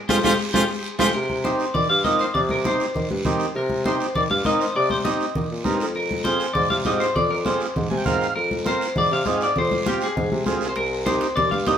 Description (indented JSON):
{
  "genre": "latin, cumbia",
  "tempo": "200 BPM",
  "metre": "4/4",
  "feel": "straight",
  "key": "C minor",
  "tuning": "A4 = 439 Hz",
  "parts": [
    { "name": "clean electric guitar", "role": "melody", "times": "0.1-11.8 s", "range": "G4 to F5", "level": "-23 LUFS", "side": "left 1 dB", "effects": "spring reverb" },
    { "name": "brilliant trumpet", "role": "second line", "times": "0.1-1.1 s", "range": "F4", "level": "-26 LUFS", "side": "right 3 dB", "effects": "none" },
    { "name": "overdriven combo organ", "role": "accompaniment", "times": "0.1-11.8 s", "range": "Ab3 to Ab5", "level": "-26 LUFS", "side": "right 3 dB", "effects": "none" },
    { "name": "mellow bassoon", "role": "bass", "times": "0.1-11.8 s", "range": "C2 to Eb3", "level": "-26 LUFS", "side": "equal", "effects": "none" },
    { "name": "congas", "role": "percussion", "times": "0.1-11.8 s", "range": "none", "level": "-27 LUFS", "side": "left 1 dB", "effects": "none" },
    { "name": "guiro", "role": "percussion", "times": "0.1-11.8 s", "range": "none", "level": "-35 LUFS", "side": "right 3 dB", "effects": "none" },
    { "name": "timbales", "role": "percussion", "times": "0.1-1.1, 10.8-11.8 s", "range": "none", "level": "-30 LUFS", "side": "right 4 dB", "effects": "none" }
  ],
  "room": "wet studio reverb, RT60 0.8 s",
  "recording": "band playing live in one room",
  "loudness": "-19 LUFS",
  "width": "side -8 dB against mid",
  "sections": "0.0-1.1 A section; 1.1-11.8 B section",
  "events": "drum fill 0.0-1.1; band accent 0.0-1.1; transistor combo organ fill 7.8-8.4",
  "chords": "0.0 Fmadd9; 1.1 Cm; 6.0 Fm; 10.8 Cm"
}